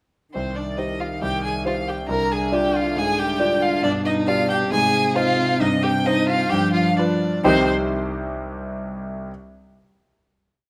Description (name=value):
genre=quick classical-period movement for piano quartet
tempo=135 BPM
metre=4/4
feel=uneven beats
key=C minor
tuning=A4 = 440 Hz
part: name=rich violin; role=melody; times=0.3-7.7 s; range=C5 to Bb5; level=-26 LUFS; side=equal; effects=none
part: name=rich cello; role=second line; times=0.3-7.7 s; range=B2 to F3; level=-29 LUFS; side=equal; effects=none
part: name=rich violin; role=second line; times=0.3-7.7 s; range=C4 to Bb4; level=-28 LUFS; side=equal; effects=none
part: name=clear concert grand piano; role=accompaniment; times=0.4-9.3 s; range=C2 to G5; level=-25 LUFS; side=equal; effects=none
room=moderate recital hall reverb, RT60 1.6 s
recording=close, detailed microphones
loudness=-21 LUFS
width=mono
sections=0.3-7.4 A section; 7.4-9.3 final chord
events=none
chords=0.3 Cm; 2.1 Ddim/C; 3.8 G; 4.7 Ab; 5.6 Cm/G; 6.5 G7; 7.4 Cm